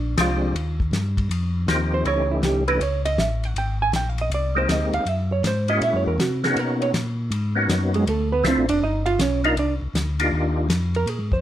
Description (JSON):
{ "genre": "soul jazz organ trio", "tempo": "160 BPM", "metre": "4/4", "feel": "swing 65% on 8ths", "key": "unclear", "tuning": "A4 = 442 Hz", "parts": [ { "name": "hollow-body jazz guitar", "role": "accompaniment", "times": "0.0-11.4 s", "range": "Ab3 to Ab5", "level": "-24 LUFS", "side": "right 4 dB", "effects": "none" }, { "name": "mellow tonewheel organ", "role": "bass", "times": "0.0-11.4 s", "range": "F1 to C3", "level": "-24 LUFS", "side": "left 1 dB", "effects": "slow rotary speaker" }, { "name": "percussive tonewheel organ", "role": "melody", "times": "0.2-10.7 s", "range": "E3 to A#4", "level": "-24 LUFS", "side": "left 1 dB", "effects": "slow rotary speaker, chorus vibrato, plate reverb" }, { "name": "warm soul drum kit", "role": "drums", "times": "0.2-11.4 s", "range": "hi-hat, kick drum, ride cymbal, snare drum", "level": "-28 LUFS", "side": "left 1 dB", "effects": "none" } ], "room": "light reverb", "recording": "none", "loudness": "-20 LUFS", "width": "side -12 dB against mid", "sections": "0.6-11.4 A section", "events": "hollow-body jazz guitar solo 0.0-11.4", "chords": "0.0 Bb13; 0.6 Eb69; 2.1 A7#11; 3.6 Abmaj9; 5.1 Gb7; 6.6 Bmaj9; 8.1 Dm7; 8.8 G7alt; 9.6 Cm11" }